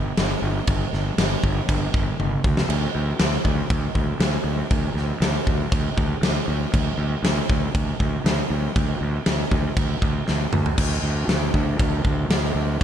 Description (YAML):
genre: heavy metal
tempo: 119 BPM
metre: 4/4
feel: straight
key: unclear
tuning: A4 = 440 Hz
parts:
  - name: fuzz fingered electric bass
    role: bass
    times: 0.0-12.8 s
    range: G1 to D2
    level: -24 LUFS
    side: equal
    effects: overdrive
  - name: big rock drum kit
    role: drums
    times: 0.2-12.8 s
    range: crash cymbal, kick drum, snare drum, toms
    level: -22 LUFS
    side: equal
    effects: vintage 12-bit sampler grit
room: little or no reverb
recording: none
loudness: -20 LUFS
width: side -9 dB against mid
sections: 0.0-10.8 A section; 10.8-12.8 B section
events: drum fill 2.2-2.7, 10.3-10.8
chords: none